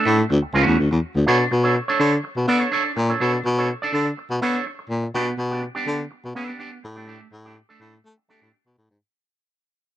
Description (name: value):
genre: disco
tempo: 124 BPM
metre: 4/4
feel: straight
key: unclear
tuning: A4 = 437 Hz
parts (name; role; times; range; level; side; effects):
- electric guitar with an envelope filter; accompaniment; 0.0-8.9 s; A3 to D5; -23 LUFS; right 4 dB; warbly pitch drift
- breathy baritone saxophone; bass; 0.1-9.0 s; C#2 to B3; -20 LUFS; left 1 dB; none
room: small room ambience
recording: none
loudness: -19 LUFS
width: side -12 dB against mid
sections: 0.0-1.3 A section; 1.3-9.0 B section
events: fade-out 1.3-9.0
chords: 0.3 Dmaj7; 1.3 Bm9; 5.1 G/B; 6.8 A7sus4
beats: 0.30 0.79 | 1.27 1.75 2.24 2.72 | 3.21 3.69 4.17 4.66 | 5.14 5.62 6.11 6.59 | 7.08 7.56 8.04 8.53